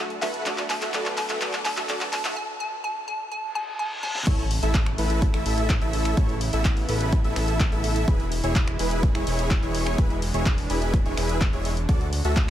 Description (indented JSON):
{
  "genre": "EDM, festival progressive house",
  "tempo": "126 BPM",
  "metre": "4/4",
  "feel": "straight",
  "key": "A major",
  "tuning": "A4 = 436 Hz",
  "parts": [
    { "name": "mellow electric guitar", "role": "accompaniment", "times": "0.0-2.4 s", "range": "F#3 to A4", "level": "-38 LUFS", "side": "left 1 dB", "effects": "analog chorus, sidechain pumping, dub echo" },
    { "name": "supersaw pad", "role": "sustained chords", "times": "0.0-12.5 s", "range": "B2 to G5", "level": "-34 LUFS", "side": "right 1 dB", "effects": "sidechain pumping" },
    { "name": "dense compressed supersaw", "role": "riff", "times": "0.0-12.4 s", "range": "E4 to E5", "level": "-29 LUFS", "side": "equal", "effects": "sidechain pumping, dub echo" },
    { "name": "riser, reverse cymbal and impact", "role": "sound effects", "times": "0.1-6.2 s", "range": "none", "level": "-36 LUFS", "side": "equal", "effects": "none" },
    { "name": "big-room dance drum kit", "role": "drums", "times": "0.1-12.5 s", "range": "crash cymbal, finger snaps, handclaps, hi-hat, snare drum", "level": "-31 LUFS", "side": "equal", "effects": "none" },
    { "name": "hollow square pluck", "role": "melody", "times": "0.2-4.1 s", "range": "E5 to A5", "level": "-31 LUFS", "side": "equal", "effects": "chorus, dub echo" },
    { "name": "fat analog bass", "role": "bass", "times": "4.3-12.5 s", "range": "E1 to D2", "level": "-26 LUFS", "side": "equal", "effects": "sidechain pumping" },
    { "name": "electronic kick drum", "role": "drums", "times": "4.3-12.5 s", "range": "none", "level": "-22 LUFS", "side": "equal", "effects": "none" }
  ],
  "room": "digital ambience",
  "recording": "high-pass filter",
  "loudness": "-22 LUFS",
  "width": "side -12 dB against mid",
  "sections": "0.0-4.3 A section; 4.3-12.5 B section",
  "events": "build-up 0.0-4.3; drum fill 0.0-2.4, 4.0; break 2.4-4.3; reverse cymbal 3.5-4.3; drop 4.3-12.5; impact 4.3-6.2",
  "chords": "0.5 G; 4.3 A; 8.1 E; 11.9 D",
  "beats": "| 0.46 0.94 1.41 1.89 | 2.36 2.84 3.32 3.79 | 4.27 4.75 5.22 5.70 | 6.17 6.65 7.13 7.60 | 8.08 8.55 9.03 9.51 | 9.98 10.46 10.94 11.41 | 11.89 12.36"
}